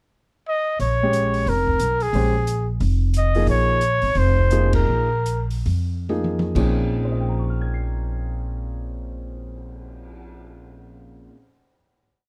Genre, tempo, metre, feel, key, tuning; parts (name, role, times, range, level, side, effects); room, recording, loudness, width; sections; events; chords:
modal jazz; 125-180 BPM; 4/4; swing 62% on 8ths; Bb dorian; A4 = 440 Hz
warm trumpet; melody; 0.5-5.5 s; Ab4 to Eb5; -24 LUFS; equal
upright bass; bass; 0.8-11.3 s; F1 to F2; -24 LUFS; equal
open jazz drum kit; drums; 0.8-10.3 s; crash cymbal, cymbal swell, hi-hat, kick drum, ride cymbal, toms; -33 LUFS; equal
warm grand piano; accompaniment; 1.0-12.2 s; Bb2 to C7; -29 LUFS; equal
light reverb; dark, warm production; -21 LUFS; mono
0.0-0.8 pickup bar; 0.8-6.6 A section; 6.6-10.4 final chord
slowing down 3.5-6.6; band accent 4.7; drum fill 6.1-6.6
0.0 N.C.; 0.8 Bbm11